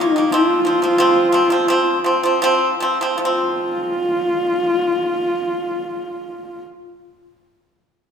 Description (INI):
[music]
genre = mongolian traditional, Mongolian folk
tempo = 75-93 BPM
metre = 4/4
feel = straight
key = unclear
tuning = A4 = 441 Hz
[part]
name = dark horsehead fiddle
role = melody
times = 0.0-6.6 s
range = Eb4 to F4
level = -18 LUFS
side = equal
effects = none
[part]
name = pipa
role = arpeggios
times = 0.0-6.7 s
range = Eb3 to C4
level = -17 LUFS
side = equal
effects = none
[sound]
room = wet concert hall reverb, RT60 1.8 s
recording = none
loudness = -15 LUFS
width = side -7 dB against mid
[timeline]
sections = 0.0-3.2 A section; 3.2-6.4 B section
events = slowing down 0.0-3.2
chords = 0.3 F5